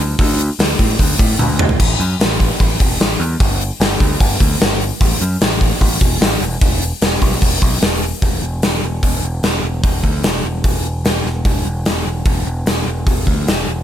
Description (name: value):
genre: hard rock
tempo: 149 BPM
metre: 4/4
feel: straight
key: unclear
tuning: A4 = 438 Hz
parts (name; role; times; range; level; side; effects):
- growling picked electric bass; bass; 0.0-13.8 s; E1 to A2; -19 LUFS; equal; overdrive
- gated 80s drum kit; drums; 0.2-13.6 s; crash cymbal, hi-hat, kick drum, snare drum, toms; -15 LUFS; equal; none
room: light reverb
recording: none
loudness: -13 LUFS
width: side -10 dB against mid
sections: 0.0-8.2 A section; 8.2-13.8 B section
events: drum fill 1.4-1.8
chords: none